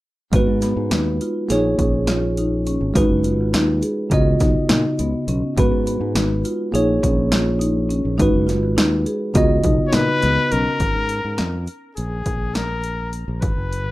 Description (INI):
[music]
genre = progressive instrumental, band music in an uneven meter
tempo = 206 BPM (eighths)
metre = 9/8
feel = straight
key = G# dorian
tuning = A4 = 440 Hz
[part]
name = bell-like tine electric piano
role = accompaniment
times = 0.3-10.8 s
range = C#3 to D#5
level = -21 LUFS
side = right 2 dB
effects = plate reverb
[part]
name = marimba with medium mallets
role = arpeggios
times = 0.3-10.7 s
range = B3 to G#4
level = -23 LUFS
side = left 2 dB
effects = plate reverb, tape echo
[part]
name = fingered electric bass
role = bass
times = 0.3-13.9 s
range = F#1 to A#2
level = -22 LUFS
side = equal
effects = none
[part]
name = punchy analog drum machine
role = drums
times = 0.3-13.9 s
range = hi-hat, kick drum, snare drum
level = -21 LUFS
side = equal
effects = none
[part]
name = clear trumpet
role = melody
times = 9.9-13.9 s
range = G#4 to C#5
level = -23 LUFS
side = left 3 dB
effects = plate reverb, tape echo
[sound]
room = light reverb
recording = rough home demo mix, lossy compression artefacts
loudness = -17 LUFS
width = side -17 dB against mid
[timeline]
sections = 0.3-10.8 A section; 10.8-13.9 B section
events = none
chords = 0.3 G#m7; 1.5 A#m7; 3.0 G#m7; 4.1 C#9sus4; 5.6 G#m7; 6.7 A#m7; 8.2 G#m7; 9.4 C#9sus4; 10.8 Fmadd11/Ab; 12.0 G#sus2/A#